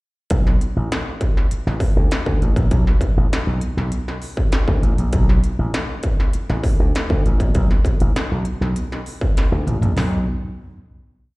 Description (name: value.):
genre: funk.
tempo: 99 BPM.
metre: 4/4.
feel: straight.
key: unclear.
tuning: A4 = 440 Hz.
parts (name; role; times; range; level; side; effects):
slap bass with an envelope filter; bass; 0.3-10.2 s; A1 to D2; -20 LUFS; equal; none.
industrial drum kit; drums; 0.3-10.1 s; hi-hat, kick drum, snare drum, toms; -18 LUFS; equal; distortion.
room: little or no reverb.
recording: live gig heard through the venue's PA, recital hall reverb.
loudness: -17 LUFS.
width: side -22 dB against mid.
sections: 0.3-10.0 A section; 10.0-11.4 final chord.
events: drum fill 9.4-10.0.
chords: none.